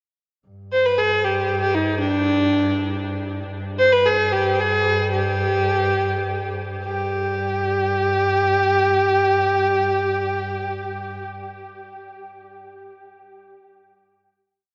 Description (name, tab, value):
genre	Persian modal ensemble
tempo	63-79 BPM (dotted quarters)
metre	6/8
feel	straight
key	G dastgah chahargah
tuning	A4 = 440 Hz
part	warm double bass	drone	0.5-11.2 s	G2	-30 LUFS	equal	none
part	clear kamancheh	melody	0.7-11.2 s	D4 to C5	-21 LUFS	equal	none
room	wet huge ambient reverb, RT60 8.0 s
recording	in a vast, echoing space, nothing above 7.6 kHz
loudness	-20 LUFS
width	mono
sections	0.5-6.9 A section; 6.9-10.7 final note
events	slowing down 3.5-6.9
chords	none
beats	| 0.48 1.24 | 2.00 2.77 | 3.53 4.30 | 5.10 5.95 | 6.86 7.82 | 8.77 9.72